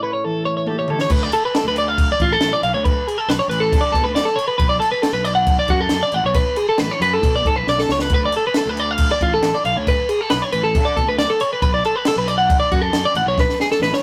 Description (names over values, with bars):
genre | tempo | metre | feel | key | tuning
math rock and midwest emo | 137 BPM | 4/4 | straight | unclear | A4 = 440 Hz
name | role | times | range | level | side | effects
twangy electric guitar | accompaniment | 0.0-1.1 s | A2 to C#5 | -28 LUFS | equal | none
twelve-string electric guitar | arpeggios | 0.0-14.0 s | F4 to F#5 | -20 LUFS | equal | none
compact cocktail drum kit | drums | 0.7-14.0 s | crash cymbal, kick drum, snare drum, toms | -23 LUFS | equal | none
fuzz fingered electric bass | bass | 1.1-13.9 s | A1 to D3 | -28 LUFS | equal | overdrive
room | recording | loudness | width
light reverb | rough rehearsal-room recording | -18 LUFS | mono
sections
0.0-1.1 A section; 1.1-14.0 B section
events
break 0.0-1.1; drum fill 0.7-1.1, 7.7-8.1, 13.4-14.0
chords
0.0 A7; 1.1 Dm6; 4.6 Bm9; 8.1 Dm6; 11.6 Bm7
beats
0.23 0.66 | 1.10 1.54 1.98 2.41 | 2.85 3.29 3.73 4.16 | 4.60 5.04 5.48 5.92 | 6.36 6.79 7.23 7.67 | 8.11 8.55 8.99 9.43 | 9.87 10.31 10.75 11.19 | 11.62 12.06 12.50 12.94 | 13.38 13.82